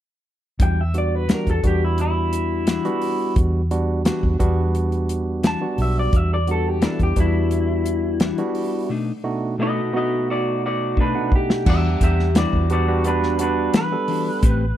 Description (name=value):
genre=straight-eighth soul blues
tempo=87 BPM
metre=4/4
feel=straight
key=E minor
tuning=A4 = 440 Hz
part: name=electric guitar through a small old amp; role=melody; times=0.6-14.8 s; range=D4 to A5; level=-24 LUFS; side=left 2 dB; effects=none
part: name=mellow electric guitar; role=stabs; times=0.6-14.6 s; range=B2 to B4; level=-28 LUFS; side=left 4 dB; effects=tape echo
part: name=vintage muted fingered electric bass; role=bass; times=0.6-14.7 s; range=A1 to E2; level=-21 LUFS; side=equal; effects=none
part: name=warm soul drum kit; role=drums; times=0.6-14.6 s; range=crash cymbal, hi-hat, kick drum, snare drum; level=-20 LUFS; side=equal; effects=none
part: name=barky tine electric piano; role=accompaniment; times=0.9-14.4 s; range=B2 to F#5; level=-24 LUFS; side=right 3 dB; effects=none
room=studio reverb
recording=dry, close 1970s-style studio recording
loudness=-18 LUFS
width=side -12 dB against mid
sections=0.6-11.7 A section; 11.7-14.8 B section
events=drum fill 11.0-11.7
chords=0.6 Em9; 8.9 B7#9; 11.7 Em9